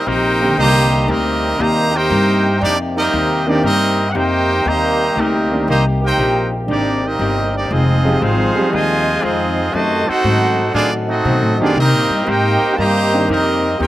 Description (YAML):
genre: jazz, big band swing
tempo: 118 BPM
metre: 4/4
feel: swing 68% on 8ths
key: C minor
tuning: A4 = 443 Hz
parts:
  - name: brilliant trumpet section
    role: melody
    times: 0.0-13.9 s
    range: Bb3 to Bb5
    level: -18 LUFS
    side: right 1 dB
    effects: slapback echo
  - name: bright trombone section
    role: second line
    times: 0.0-13.9 s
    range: C3 to G4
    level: -21 LUFS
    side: right 3 dB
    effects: slapback echo
  - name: muted trombone section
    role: sustained chords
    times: 0.0-13.9 s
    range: C3 to A4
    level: -25 LUFS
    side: left 1 dB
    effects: none
  - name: vintage hollow-body jazz guitar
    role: accompaniment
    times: 0.1-13.9 s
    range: F2 to G4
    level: -24 LUFS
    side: left 5 dB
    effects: slapback echo
  - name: upright bass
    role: bass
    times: 0.1-13.9 s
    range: F1 to C3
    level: -19 LUFS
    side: equal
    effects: none
  - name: warm grand piano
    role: accompaniment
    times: 0.4-13.3 s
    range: D3 to G4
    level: -19 LUFS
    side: right 1 dB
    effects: none
room: little or no reverb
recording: recorded outdoors, with no room sound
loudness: -13 LUFS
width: side -15 dB against mid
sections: 0.0-13.9 A section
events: none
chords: 0.0 Cm7; 7.7 Fm7; 9.7 F#dim7; 11.8 Cm7